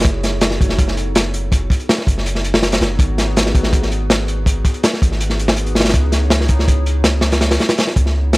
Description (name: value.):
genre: drum and bass, jungle.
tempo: 163 BPM.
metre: 4/4.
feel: straight.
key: unclear.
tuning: A4 = 441 Hz.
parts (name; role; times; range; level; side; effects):
warbly tape-like pad; sustained chords; 0.0-8.4 s; B3 to C#5; -27 LUFS; equal; chorus, built-in reverb.
long sustained 808-style bass; bass; 0.0-8.4 s; F#1 to C#2; -18 LUFS; equal; none.
crunchy breakbeat drum kit; drums; 0.0-8.4 s; hi-hat, kick drum, snare drum; -15 LUFS; equal; none.
room: little or no reverb.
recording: dry, gritty hardware recording.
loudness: -13 LUFS.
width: side -21 dB against mid.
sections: 0.0-8.4 A section.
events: none.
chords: 0.0 B9/F#; 3.0 G#m7; 5.9 C#m9.